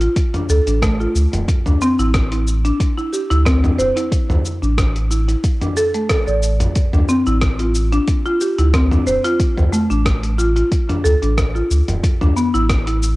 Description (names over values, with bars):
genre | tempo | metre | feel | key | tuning
organic downtempo | 91 BPM | 4/4 | swing 54% on 16ths | unclear | A4 = 435 Hz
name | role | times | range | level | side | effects
buzzing marimba with medium mallets | arpeggios | 0.0-13.0 s | A3 to D5 | -19 LUFS | equal | tape echo
warm sub bass | bass | 0.0-13.2 s | D1 to D2 | -17 LUFS | equal | none
dusty soul sampler-style drum kit | drums | 0.0-13.2 s | hi-hat, rim click, shaker, toms | -23 LUFS | equal | none
electronic kick drum | drums | 0.2-12.8 s | none | -18 LUFS | equal | overdrive
room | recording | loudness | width
digital ambience | home recording on cassette | -14 LUFS | side -19 dB against mid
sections
0.0-13.2 A section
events
none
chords
0.0 Dm; 1.5 A5; 6.8 G7(no3) (rootless); 12.0 E5/D